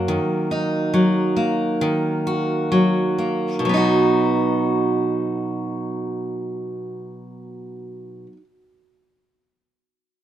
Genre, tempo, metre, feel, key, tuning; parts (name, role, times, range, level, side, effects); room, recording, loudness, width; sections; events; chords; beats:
pop; 64-71 BPM; 4/4; swing 60% on 16ths; B major; A4 = 440 Hz
picked steel-string acoustic guitar; accompaniment; 0.0-8.4 s; F#2 to F#4; -19 LUFS; right 1 dB
light reverb; minimal, uncompressed stereo recording; -18 LUFS; side -11 dB against mid
0.0-3.6 A section; 3.6-7.4 B section
slowing down 0.0-3.6
0.1 D#m; 3.6 B
| 0.08 0.94 1.81 2.71 | 3.64 4.58 5.53 6.47